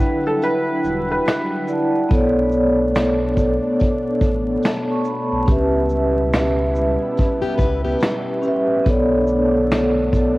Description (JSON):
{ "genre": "lo-fi hip hop", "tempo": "71 BPM", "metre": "4/4", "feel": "swing 62% on 16ths", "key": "B minor", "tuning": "A4 = 438 Hz", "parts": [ { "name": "felt-muted upright piano", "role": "melody", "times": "0.0-2.1 s", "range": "A4 to B4", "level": "-23 LUFS", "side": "equal", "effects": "cassette tape, tape echo" }, { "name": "vibraphone with soft mallets", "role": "accompaniment", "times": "0.0-10.4 s", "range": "B3 to C#6", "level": "-18 LUFS", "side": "equal", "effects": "cassette tape" }, { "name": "lush unison pad", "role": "sustained chords", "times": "0.0-10.4 s", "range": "B2 to E4", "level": "-28 LUFS", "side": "equal", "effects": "chorus, cassette tape" }, { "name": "vintage brush drum kit", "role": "drums", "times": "0.0-10.4 s", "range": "finger snaps, hi-hat, kick drum, shaker, snare drum", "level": "-20 LUFS", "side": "equal", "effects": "vintage 12-bit sampler grit" }, { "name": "sub bass with octave", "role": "bass", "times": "0.8-10.4 s", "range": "E1 to C#2", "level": "-25 LUFS", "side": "equal", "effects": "tube saturation" }, { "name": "nylon-string guitar", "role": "second line", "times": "7.4-8.8 s", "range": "B3 to B4", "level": "-27 LUFS", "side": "left 4 dB", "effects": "cassette tape, tape echo" } ], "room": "moderate spring reverb, RT60 2.4 s", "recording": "home recording on cassette, vinyl crackle", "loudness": "-16 LUFS", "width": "side -19 dB against mid", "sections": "0.0-10.4 A section", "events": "kick muted 0.4-2.1", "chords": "0.0 Em9; 2.1 Bm9; 5.5 C#m7b5; 8.9 Bm9" }